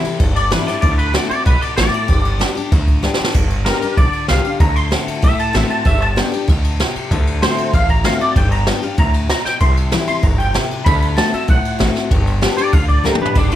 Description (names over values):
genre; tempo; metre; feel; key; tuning
rockabilly; 192 BPM; 4/4; straight; G major; A4 = 440 Hz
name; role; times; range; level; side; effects
twangy electric guitar; melody; 0.0-13.6 s; A3 to C6; -20 LUFS; equal; ensemble chorus, tape echo
picked steel-string acoustic guitar; accompaniment; 0.0-13.6 s; G2 to G4; -22 LUFS; left 5 dB; none
jazz brush drum kit; drums; 0.0-13.6 s; crash cymbal, kick drum, ride cymbal, snare drum, toms; -17 LUFS; right 1 dB; none
upright bass; bass; 0.1-13.6 s; G1 to D2; -18 LUFS; equal; none
room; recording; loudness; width
little or no reverb; none; -13 LUFS; side -12 dB against mid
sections
0.0-3.3 A section; 3.3-13.4 A section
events
clean electric guitar solo 0.0-13.4; drum fill 3.0-3.3, 13.0-13.4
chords
0.0 C; 0.8 D7; 2.1 G; 4.6 D7; 5.9 G; 7.1 D7; 8.4 G; 9.6 C; 10.9 D7; 12.1 G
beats
0.20 0.52 | 0.83 1.15 1.46 1.77 | 2.09 2.40 2.72 3.03 | 3.35 3.66 3.97 4.29 | 4.60 4.92 5.23 5.54 | 5.86 6.17 6.48 6.80 | 7.11 7.42 7.74 8.05 | 8.36 8.67 8.99 9.30 | 9.61 9.92 10.24 10.55 | 10.86 11.17 11.48 11.80 | 12.11 12.42 12.73 13.05 | 13.36